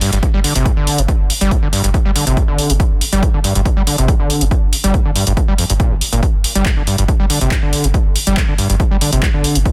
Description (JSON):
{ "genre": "driving peak-time techno", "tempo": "140 BPM", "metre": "4/4", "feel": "straight", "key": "G minor", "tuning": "A4 = 440 Hz", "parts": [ { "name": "overdriven acid bass", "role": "riff", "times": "0.0-9.7 s", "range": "F2 to G3", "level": "-21 LUFS", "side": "equal", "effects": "distortion, analog chorus, sidechain pumping, tape echo" }, { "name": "punchy analog drum machine", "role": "drums", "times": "0.0-9.7 s", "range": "handclaps, hi-hat", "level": "-22 LUFS", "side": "equal", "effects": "overdrive, sidechain pumping on hats, sidechain pumping on cymbals" }, { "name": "saturated sub bass", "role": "bass", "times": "0.1-9.7 s", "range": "G1", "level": "-20 LUFS", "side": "equal", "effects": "overdrive, sidechain pumping, low-pass filter" }, { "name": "electronic kick drum", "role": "drums", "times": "0.2-9.7 s", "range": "none", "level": "-18 LUFS", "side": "equal", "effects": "none" } ], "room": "little or no reverb", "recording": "dense, heavily limited modern master", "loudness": "-15 LUFS", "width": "mono", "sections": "0.0-9.7 A section", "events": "filter sweep on acid bass 0.0-9.7", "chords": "0.0 G5" }